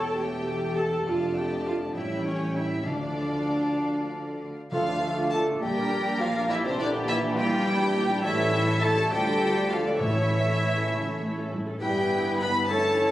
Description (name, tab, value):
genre	quick classical-period movement for symphony orchestra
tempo	67 BPM (dotted quarters)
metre	6/8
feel	rubato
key	D minor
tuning	A4 = 439 Hz
part	warm chamber violin section	melody	0.0-13.1 s	C5 to B5	-31 LUFS	equal	none
part	warm chamber violin section	second line	0.0-13.1 s	E4 to A5	-34 LUFS	left 1 dB	none
part	dark chamber viola section	accompaniment	0.0-13.1 s	A3 to Bb4	-31 LUFS	right 1 dB	none
part	mellow French horn section	sustained chords	0.0-13.1 s	C3 to G4	-32 LUFS	left 2 dB	none
part	dark studio cello section	bass	0.0-13.1 s	E2 to D3	-35 LUFS	right 1 dB	none
part	warm studio double bass section	bass	0.0-13.1 s	E1 to D2	-34 LUFS	right 1 dB	none
part	timpani	percussion	2.9-5.6, 10.0-10.9 s	A2 to D3	-35 LUFS	equal	none
part	clear oboe	second line	4.7-13.1 s	B4 to D5	-37 LUFS	equal	none
part	mellow baroque flute	second line	4.7-13.1 s	C5 to B5	-34 LUFS	right 1 dB	none
part	warm clarinet	second line	4.7-13.1 s	C4 to B4	-31 LUFS	equal	none
part	mellow bassoon	accompaniment	4.7-13.1 s	E3 to A3	-34 LUFS	right 1 dB	none
room	wet scoring stage reverb, RT60 1.8 s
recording	recorded on a phone in the room, club reverb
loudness	-24 LUFS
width	side -14 dB against mid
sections	0.0-4.7 A section; 4.7-13.1 B section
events	none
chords	0.0 A7(no3)/E; 1.1 Dm/F; 2.0 A7; 2.9 Dm; 5.6 Gm/Bb; 6.5 Em7b5/Bb; 8.2 A7; 9.1 Dm; 10.0 A; 11.8 Em/G